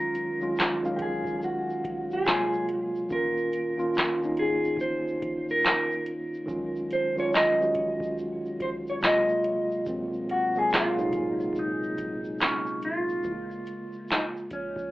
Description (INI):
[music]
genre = lo-fi hip hop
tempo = 71 BPM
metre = 4/4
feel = swing 64% on 16ths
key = Db major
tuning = A4 = 442 Hz
[part]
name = mellow electric guitar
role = melody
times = 0.0-14.9 s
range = Db4 to Eb5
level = -28 LUFS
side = equal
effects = phaser
[part]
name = mellow tine electric piano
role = accompaniment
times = 0.0-14.9 s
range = Bb2 to F5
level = -29 LUFS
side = right 1 dB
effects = medium stereo tremolo
[part]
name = booming analog drum machine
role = drums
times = 0.0-14.9 s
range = handclaps, hi-hat, kick drum, shaker, snare drum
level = -28 LUFS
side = equal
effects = none
[part]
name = egg shaker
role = percussion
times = 0.1-14.9 s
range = none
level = -61 LUFS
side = left 1 dB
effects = none
[sound]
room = wet small room reverb, RT60 0.5 s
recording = rough home demo mix, cassette tape, telephone sound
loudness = -25 LUFS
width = side -17 dB against mid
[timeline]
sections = 0.0-13.2 A section; 13.2-14.9 B section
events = none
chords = 0.0 Ebm11; 2.3 Ab13; 3.1 Db69; 6.5 Ebm11; 9.0 Ab13; 13.2 Db6